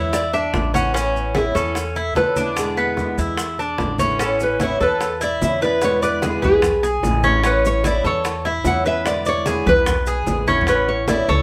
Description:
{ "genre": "latin, Cuban son and guajira", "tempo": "148 BPM", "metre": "4/4", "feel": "straight", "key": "A major", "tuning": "A4 = 440 Hz", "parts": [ { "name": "nylon-string guitar", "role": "melody", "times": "0.0-11.4 s", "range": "G#4 to F#5", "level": "-24 LUFS", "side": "equal", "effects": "none" }, { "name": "picked old ladder-braced acoustic guitar", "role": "accompaniment", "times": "0.0-11.4 s", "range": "B2 to E4", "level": "-27 LUFS", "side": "equal", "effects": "none" }, { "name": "Cuban tres", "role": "arpeggios", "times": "0.0-11.4 s", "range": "B3 to D5", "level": "-24 LUFS", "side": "equal", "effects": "none" }, { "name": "upright bass", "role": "bass", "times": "0.0-11.4 s", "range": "A1 to E2", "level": "-27 LUFS", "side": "equal", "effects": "none" }, { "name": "bongos", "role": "percussion", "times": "0.1-11.4 s", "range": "none", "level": "-31 LUFS", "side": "equal", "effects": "none" }, { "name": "congas", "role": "percussion", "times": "0.1-11.4 s", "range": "none", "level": "-30 LUFS", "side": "equal", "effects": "none" }, { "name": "maracas", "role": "percussion", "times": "0.1-11.4 s", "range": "none", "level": "-39 LUFS", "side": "equal", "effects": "none" } ], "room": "moderate studio reverb, RT60 0.6 s", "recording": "band playing live in one room", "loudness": "-19 LUFS", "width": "mono", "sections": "0.0-4.2 A section; 4.2-11.4 B section", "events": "drum fill 10.5", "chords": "0.0 E7; 0.9 Aadd9; 2.6 E7; 4.2 Aadd9; 5.8 E7; 7.4 Aadd9; 9.1 E7; 10.7 Aadd9", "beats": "0.13 0.54 | 0.94 1.35 1.76 2.16 | 2.57 2.98 3.38 3.79 | 4.19 4.60 5.00 5.41 | 5.82 6.22 6.63 7.03 | 7.44 7.84 8.25 8.65 | 9.06 9.46 9.87 10.27 | 10.68 11.08" }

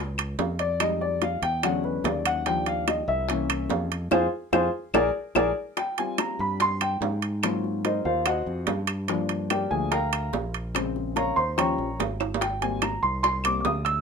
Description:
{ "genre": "Afro-Cuban jazz", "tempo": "145 BPM", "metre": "4/4", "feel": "straight", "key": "unclear", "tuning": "A4 = 437 Hz", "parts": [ { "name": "modern bright fingered electric bass", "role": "bass", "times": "0.0-14.0 s", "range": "Ab1 to Ab2", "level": "-31 LUFS", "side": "equal", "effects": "none" }, { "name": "bongos", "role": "percussion", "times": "0.2-13.9 s", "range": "none", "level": "-33 LUFS", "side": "left 7 dB", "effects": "none" }, { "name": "claves", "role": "percussion", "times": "0.2-13.6 s", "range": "none", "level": "-33 LUFS", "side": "left 3 dB", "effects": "none" }, { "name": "timbales", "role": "percussion", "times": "0.2-14.0 s", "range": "none", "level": "-28 LUFS", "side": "right 9 dB", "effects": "none" }, { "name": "dark baby grand piano", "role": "accompaniment", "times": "0.6-14.0 s", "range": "Db3 to Fb6", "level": "-25 LUFS", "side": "left 1 dB", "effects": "none" } ], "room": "moderate small room reverb, RT60 0.5 s", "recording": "minimal, uncompressed stereo recording", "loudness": "-23 LUFS", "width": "side -5 dB against mid", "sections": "0.0-5.8 A section; 5.8-14.0 A section", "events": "grand piano solo 0.0-14.0; band accent 4.1-5.8; drum fill 5.2-5.8, 12.2", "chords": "0.0 Gbmaj7(no3) (rootless); 0.8 Fm7; 1.6 E13; 2.5 Ebmaj7; 3.3 C7b9; 4.1 Fm; 4.9 Bb7; 5.8 Abmaj13/G; 7.4 Ab13; 9.1 Gm7; 10.7 Bbm7; 11.6 Eb7; 12.4 Abmaj9", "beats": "0.39 | 0.80 1.22 1.63 2.04 | 2.46 2.87 3.29 3.70 | 4.12 4.53 4.94 5.36 | 5.77 6.19 6.60 7.02 | 7.43 7.85 8.26 8.68 | 9.09 9.51 9.92 10.33 | 10.75 11.16 11.58 11.99 | 12.41 12.82 13.24 13.65" }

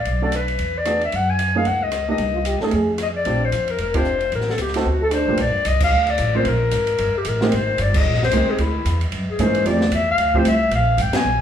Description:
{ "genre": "jazz, small-group swing and bop", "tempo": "225 BPM", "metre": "4/4", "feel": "swing 59% on 8ths", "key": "unclear", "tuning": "A4 = 443 Hz", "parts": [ { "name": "clear clarinet", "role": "melody", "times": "0.0-11.4 s", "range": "E4 to Ab5", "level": "-20 LUFS", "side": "left 3 dB", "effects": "none" }, { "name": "upright bass", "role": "bass", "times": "0.0-11.4 s", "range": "F1 to G#2", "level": "-23 LUFS", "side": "right 1 dB", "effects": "none" }, { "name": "open jazz drum kit", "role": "drums", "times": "0.1-11.2 s", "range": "crash cymbal, hi-hat, kick drum, ride cymbal, rim click, snare drum", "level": "-26 LUFS", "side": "equal", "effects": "none" }, { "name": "warm baby grand piano", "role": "accompaniment", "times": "0.2-10.4 s", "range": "G2 to Bb4", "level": "-23 LUFS", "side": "right 2 dB", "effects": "none" }, { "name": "breathy trombone", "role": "second line", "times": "2.3-2.9, 5.0-5.4 s", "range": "D4 to A4", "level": "-24 LUFS", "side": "right 2 dB", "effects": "none" } ], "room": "wet large studio reverb, RT60 0.9 s", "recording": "band playing live in one room", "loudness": "-17 LUFS", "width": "side -9 dB against mid", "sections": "0.0-5.4 A section; 5.4-11.4 B section", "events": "band accent 3.9, 5.8, 7.9, 11.1", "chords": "0.1 Bm7; 0.6 E9; 1.1 Gb69; 2.2 Cm; 2.7 Fm; 3.3 Bb69; 4.3 Adim; 4.9 Abmaj9#11; 5.4 Gm9 (rootless); 6.5 Absus2; 7.0 Eb; 7.5 Abmaj7; 8.6 Dsus2; 9.1 F#13; 9.7 Fmaj7; 10.7 Bb7(no3)", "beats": "| 0.06 0.33 0.59 0.86 | 1.13 1.39 1.66 1.93 | 2.19 2.46 2.72 2.99 | 3.26 3.52 3.79 4.06 | 4.32 4.59 4.86 5.12 | 5.39 5.66 5.92 6.19 | 6.46 6.72 6.99 7.25 | 7.52 7.79 8.05 8.32 | 8.59 8.85 9.12 9.39 | 9.65 9.92 10.19 10.45 | 10.72 10.98 11.25" }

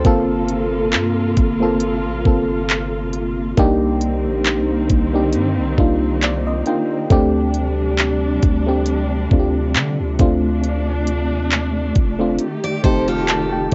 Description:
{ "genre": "contemporary R&B", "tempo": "68 BPM", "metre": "4/4", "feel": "swing 54% on 16ths", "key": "unclear", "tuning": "A4 = 439 Hz", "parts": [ { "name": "FM electric piano", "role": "accompaniment", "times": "0.0-13.7 s", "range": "A3 to A5", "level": "-22 LUFS", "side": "equal", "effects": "cassette tape" }, { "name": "warm studio string section", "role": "sustained chords", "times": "0.0-13.7 s", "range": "C3 to A4", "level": "-27 LUFS", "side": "equal", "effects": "sidechain pumping, cassette tape" }, { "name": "long sustained 808-style bass", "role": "bass", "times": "0.0-13.7 s", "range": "F1 to D3", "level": "-25 LUFS", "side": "equal", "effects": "none" }, { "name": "smooth R&B drum kit", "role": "drums", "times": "0.0-13.7 s", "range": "handclaps, hi-hat, kick drum", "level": "-19 LUFS", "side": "equal", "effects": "cassette tape" }, { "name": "picked steel-string acoustic guitar", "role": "arpeggios", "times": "12.6-13.7 s", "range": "F4 to D5", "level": "-26 LUFS", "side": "equal", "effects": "cassette tape, tape echo" } ], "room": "light reverb", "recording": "home recording on cassette, nothing above 7.9 kHz", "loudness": "-18 LUFS", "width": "mono", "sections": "0.0-13.7 A section", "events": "FM electric piano fill 5.8-7.1, 12.8-13.7", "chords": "0.0 Gm11; 3.6 Cm9; 7.1 D7sus4; 10.2 F6; 12.4 F9", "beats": "| 0.05 0.93 1.81 2.69 | 3.58 4.46 5.34 6.22 | 7.11 7.99 8.87 9.75 | 10.63 11.52 12.40 13.28" }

